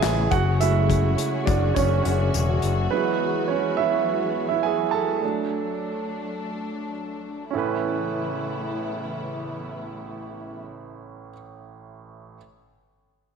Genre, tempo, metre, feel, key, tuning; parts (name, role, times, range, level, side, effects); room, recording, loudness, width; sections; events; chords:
piano-driven pop; 104 BPM; 4/4; straight; A major; A4 = 440 Hz
clear concert grand piano; accompaniment; 0.0-12.4 s; A1 to A5; -26 LUFS; right 8 dB
warm studio string section; sustained chords; 0.0-10.6 s; C#3 to G#4; -30 LUFS; left 3 dB
modern bright picked electric bass; bass; 0.0-2.9 s; E1 to A1; -22 LUFS; left 3 dB
unplugged drum kit; drums; 0.0-2.8 s; handclaps, hi-hat, kick drum, snare drum; -27 LUFS; left 6 dB
moderate echo chamber reverb, RT60 2.2 s; 1960s-style stereo with parts hard left and right, faint mains hum; -22 LUFS; side -6 dB against mid
0.0-7.5 A section; 7.5-9.9 B section
grand piano solo 0.0-7.5
0.3 F#madd9; 2.9 Eadd9; 5.2 D; 7.5 Aadd9